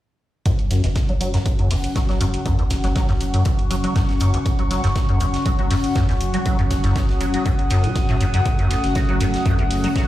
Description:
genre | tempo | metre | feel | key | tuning
acid house | 120 BPM | 4/4 | straight | F# dorian | A4 = 442 Hz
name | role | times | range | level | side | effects
warm analog pad | sustained chords | 0.5-10.1 s | C#3 to C#4 | -28 LUFS | equal | chorus, sidechain pumping
liquid acid bass | riff | 0.5-10.1 s | E2 to F#3 | -21 LUFS | equal | tube saturation, ensemble chorus, tape echo
electronic hi-hat | drums | 0.5-10.1 s | none | -33 LUFS | right 1 dB | none
electronic kick drum | drums | 0.5-10.1 s | none | -21 LUFS | equal | none
soft-mallet drum kit | drums | 0.5-10.1 s | hi-hat, snare drum | -38 LUFS | left 2 dB | sidechain pumping on hats, high-pass filter on hats, high-pass filter on snare, high-pass filter on room
warbly tape-like pad | texture | 0.9-10.1 s | C#4 to D#6 | -26 LUFS | left 1 dB | chorus, built-in reverb, sidechain pumping
warm sub bass | bass | 0.7-9.9 s | F#1 | -25 LUFS | equal | sidechain pumping
room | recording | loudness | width
light reverb | played on a big sound system in a bare room, large studio reverb | -17 LUFS | side -14 dB against mid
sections
0.5-10.1 A section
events
none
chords
0.5 F#5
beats
| 0.46 0.96 1.46 1.96 | 2.46 2.96 3.46 3.96 | 4.46 4.96 5.46 5.96 | 6.46 6.96 7.46 7.96 | 8.46 8.96 9.46 9.96

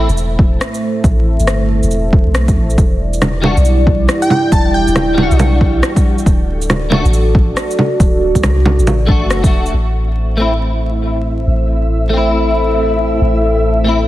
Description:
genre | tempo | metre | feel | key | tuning
future garage | 138 BPM | 4/4 | swing 63% on 16ths | unclear | A4 = 441 Hz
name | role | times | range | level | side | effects
clean electric guitar | accompaniment | 0.0-0.1, 3.4-14.0 s | G3 to F#4 | -19 LUFS | left 1 dB | ensemble chorus, sidechain pumping, analog delay
dark analog pad | sustained chords | 0.2-14.1 s | G3 to E5 | -18 LUFS | right 1 dB | chorus, phaser, vintage 12-bit sampler grit, sidechain pumping
soft 808-style bass | bass | 0.0-14.1 s | D1 to C2 | -15 LUFS | equal | tube saturation, sidechain pumping
electronic shaker, rim click and bongos | drums | 0.1-9.7 s | none | -17 LUFS | equal | low-pass filter on perc, soft clipping on snare, low-pass filter on snare, low-pass filter on room
electronic kick drum | drums | 0.4-9.5 s | none | -12 LUFS | equal | none
plucky unison lead | melody | 4.2-5.4 s | G5 to A5 | -21 LUFS | equal | tape echo
flickering grainy texture | texture | 10.2-14.1 s | E5 | -24 LUFS | equal | built-in reverb
room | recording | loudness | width
light reverb | dense, heavily limited modern master, vinyl crackle | -11 LUFS | side -15 dB against mid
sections
0.0-9.7 A section; 9.7-14.1 B section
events
none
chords
0.0 Am; 2.8 Em7; 6.3 D; 9.7 Am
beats
0.17 0.61 | 1.04 1.48 1.91 2.35 | 2.78 3.22 3.65 4.09 | 4.52 4.96 5.39 5.83 | 6.26 6.70 7.13 7.57 | 8.00 8.43 8.87 9.30 | 9.74 10.17 10.61 11.04 | 11.48 11.91 12.35 12.78 | 13.22 13.65

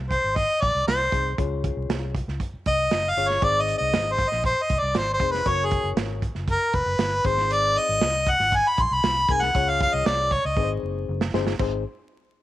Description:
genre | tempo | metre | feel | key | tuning
uptempo 1960s-style soul | 118 BPM | 4/4 | straight | Ab mixolydian | A4 = 438 Hz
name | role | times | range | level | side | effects
vintage muted fingered electric bass | bass | 0.0-11.8 s | F1 to Db2 | -29 LUFS | equal | none
warm harmonica | melody | 0.1-10.7 s | Ab4 to C6 | -22 LUFS | equal | none
crunchy breakbeat drum kit | drums | 0.1-11.7 s | crash cymbal, hi-hat, kick drum, snare drum | -27 LUFS | right 2 dB | none
barky reed electric piano | accompaniment | 1.1-11.8 s | C4 to Db5 | -30 LUFS | left 10 dB | overdrive
room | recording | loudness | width
light reverb | 1960s-style stereo, vinyl crackle | -21 LUFS | side -14 dB against mid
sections
0.0-11.6 A section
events
harmonica solo 0.0-11.6; drum fill 10.6-11.6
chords
0.0 Ab; 1.4 Db; 3.4 Ab; 5.5 Gb; 7.2 Ab; 9.5 Db; 10.6 Ab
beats
0.36 0.87 | 1.38 1.89 2.40 2.91 | 3.42 3.93 4.44 4.95 | 5.46 5.97 6.48 6.99 | 7.50 8.02 8.53 9.04 | 9.55 10.06 10.57 11.08 | 11.59

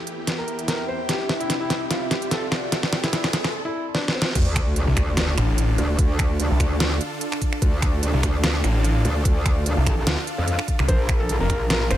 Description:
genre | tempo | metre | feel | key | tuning
heavy wobble dubstep | 147 BPM | 4/4 | swing 54% on 16ths, half-time | D minor | A4 = 440 Hz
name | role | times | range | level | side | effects
supersaw chords | sustained chords | 0.0-12.0 s | C2 to Bb4 | -33 LUFS | equal | sidechain pumping, low-pass filter
riser and sub drop | sound effects | 0.3-6.0 s | none | -31 LUFS | equal | none
warbly tape-like pad | texture | 0.0-12.0 s | Bb3 to C6 | -32 LUFS | equal | chorus, built-in reverb, sidechain pumping
dubstep drum kit | drums | 0.1-12.0 s | crash cymbal, finger snaps, hi-hat, snare drum | -25 LUFS | equal | small room ambience
felt-muted upright piano | melody | 0.4-4.3, 10.9-12.0 s | C4 to C5 | -29 LUFS | left 1 dB | vintage 12-bit sampler grit, ping-pong delay
metallic wobble bass | bass | 4.4-11.9 s | A1 to F2 | -23 LUFS | equal | distortion, chorus, overdrive
electronic kick drum | drums | 4.4-11.6 s | none | -22 LUFS | equal | overdrive, small room ambience
snarling distorted saw bass | bass | 4.9-12.0 s | F1 to D2 | -20 LUFS | equal | distortion, overdrive
room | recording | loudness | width
digital ambience | none | -20 LUFS | side -12 dB against mid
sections
0.0-4.4 A section; 4.4-12.0 B section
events
build-up 0.0-4.4; drum fill 0.0-3.5, 3.9-4.4; riser 0.3-3.5; drop 4.4-12.0; impact 4.4-6.0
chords
0.0 Em; 1.1 C; 2.7 Am/C; 4.4 Dm; 10.9 Bb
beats
0.27 0.68 | 1.09 1.50 1.91 2.31 | 2.72 3.13 3.54 3.95 | 4.35 4.76 5.17 5.58 | 5.99 6.39 6.80 7.21 | 7.62 8.03 8.44 8.84 | 9.25 9.66 10.07 10.48 | 10.88 11.29 11.70

